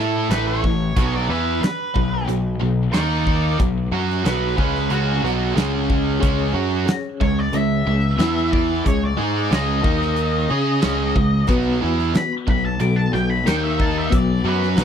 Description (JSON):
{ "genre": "classic rock", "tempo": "91 BPM", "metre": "4/4", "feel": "straight", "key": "unclear", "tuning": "A4 = 439 Hz", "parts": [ { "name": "overdriven semi-hollow guitar", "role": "riff", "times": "0.0-14.8 s", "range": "A2 to C#5", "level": "-23 LUFS", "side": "right 13 dB", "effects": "none" }, { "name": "tight distorted guitar", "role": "riff", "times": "0.0-14.8 s", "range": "A2 to C#5", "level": "-25 LUFS", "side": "left 12 dB", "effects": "distortion" }, { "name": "fuzz picked electric bass", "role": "bass", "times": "0.0-14.8 s", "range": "A1 to C#3", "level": "-23 LUFS", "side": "equal", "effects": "overdrive" }, { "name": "octave-fuzz lead guitar", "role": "melody", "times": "0.3-14.8 s", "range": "F#4 to D6", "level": "-26 LUFS", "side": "left 2 dB", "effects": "distortion" }, { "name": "big rock drum kit", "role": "drums", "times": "0.3-14.8 s", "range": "hi-hat, kick drum, snare drum", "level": "-22 LUFS", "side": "equal", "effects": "none" }, { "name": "reed electric piano", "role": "accompaniment", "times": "6.2-14.8 s", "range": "G#3 to C#6", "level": "-27 LUFS", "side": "left 5 dB", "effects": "fast tremolo" } ], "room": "little or no reverb", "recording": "dry, close 1970s-style studio recording", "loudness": "-17 LUFS", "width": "side -8 dB against mid", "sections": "0.0-14.8 A section", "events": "lead electric guitar solo 0.0-14.8", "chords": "0.0 A5; 1.0 B5; 2.9 D#5; 3.6 B5; 5.6 C#5; 8.2 E5; 8.9 C#5; 9.8 D#5; 10.5 C#5; 11.5 B5; 13.5 D#5; 14.1 B5" }